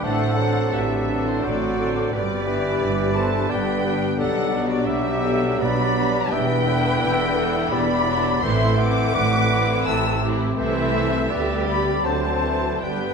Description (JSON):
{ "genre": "classical, slow romantic movement for symphony orchestra", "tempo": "72-90 BPM", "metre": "3/4", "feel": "rubato", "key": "G major", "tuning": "A4 = 440 Hz", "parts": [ { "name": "rich studio violin section", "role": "melody", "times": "0.0-13.1 s", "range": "C5 to E6", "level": "-26 LUFS", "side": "left 2 dB", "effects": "none" }, { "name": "bright clarinet", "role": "second line", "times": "0.0-13.1 s", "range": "G4 to C5", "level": "-31 LUFS", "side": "left 2 dB", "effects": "none" }, { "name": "concert flute", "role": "second line", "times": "0.0-13.1 s", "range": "E4 to A5", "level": "-29 LUFS", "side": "left 2 dB", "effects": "none" }, { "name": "rich studio violin section", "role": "second line", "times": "0.0-13.1 s", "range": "B3 to G4", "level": "-32 LUFS", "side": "left 1 dB", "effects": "none" }, { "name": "warm oboe", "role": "second line", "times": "0.0-13.1 s", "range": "A4 to E5", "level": "-31 LUFS", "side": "equal", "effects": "none" }, { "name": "rich studio viola section", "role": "accompaniment", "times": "0.0-13.1 s", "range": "D3 to C4", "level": "-29 LUFS", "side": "right 1 dB", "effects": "none" }, { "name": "warm bassoon", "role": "accompaniment", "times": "0.0-13.1 s", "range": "C3 to A3", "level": "-30 LUFS", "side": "right 1 dB", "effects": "none" }, { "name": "mellow French horn section", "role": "sustained chords", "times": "0.0-13.1 s", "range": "F#3 to D4", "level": "-28 LUFS", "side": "left 5 dB", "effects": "none" }, { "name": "clear chamber double bass section", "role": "bass", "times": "0.0-13.1 s", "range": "E1 to D2", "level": "-28 LUFS", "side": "right 4 dB", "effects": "none" }, { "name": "rich chamber cello section", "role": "bass", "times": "0.0-13.1 s", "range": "D2 to C3", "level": "-28 LUFS", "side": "right 4 dB", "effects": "none" } ], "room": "wet scoring stage reverb, RT60 1.7 s", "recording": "minimal, uncompressed stereo recording", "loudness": "-19 LUFS", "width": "side -5 dB against mid", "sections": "0.0-13.1 A section", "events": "none", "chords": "0.0 D7/A; 2.1 G; 4.2 G/B; 6.3 Em7; 8.4 Am; 10.6 Am/C; 11.3 G/D; 12.0 D7" }